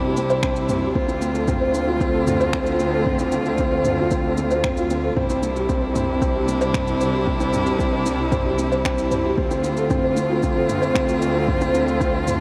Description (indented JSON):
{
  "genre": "piano and strings electronica",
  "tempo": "114 BPM",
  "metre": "4/4",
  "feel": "straight",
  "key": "D minor",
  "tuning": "A4 = 439 Hz",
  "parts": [
    { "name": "warm string quartet", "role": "sustained chords", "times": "0.0-12.4 s", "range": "C3 to F4", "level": "-27 LUFS", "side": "equal", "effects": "none" },
    { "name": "felt-muted upright piano", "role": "riff", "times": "0.0-12.4 s", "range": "C4 to C5", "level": "-24 LUFS", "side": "equal", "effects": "delay" },
    { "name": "clear studio double bass section", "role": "bass", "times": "0.0-12.4 s", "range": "C2 to D2", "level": "-30 LUFS", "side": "equal", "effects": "sidechain pumping" },
    { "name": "deep house drum kit", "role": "drums", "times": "0.2-12.4 s", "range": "finger snaps, shaker, toms", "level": "-33 LUFS", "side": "equal", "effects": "overdrive" },
    { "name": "electronic kick drum", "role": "drums", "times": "0.4-12.1 s", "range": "none", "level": "-28 LUFS", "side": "equal", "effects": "overdrive" }
  ],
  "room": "moderate huge ambient reverb, RT60 8.1 s",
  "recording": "dreamy mix soaked in reverb",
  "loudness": "-21 LUFS",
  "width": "mono",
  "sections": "0.0-12.4 A section",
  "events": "none",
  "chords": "0.0 Cadd9; 1.0 Dm7; 5.2 Cadd9; 9.4 Dm7",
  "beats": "0.43 | 0.96 1.48 2.01 2.54 | 3.06 3.59 4.11 4.64 | 5.17 5.69 6.22 6.75 | 7.27 7.80 8.32 8.85 | 9.38 9.90 10.43 10.96 | 11.48 12.01"
}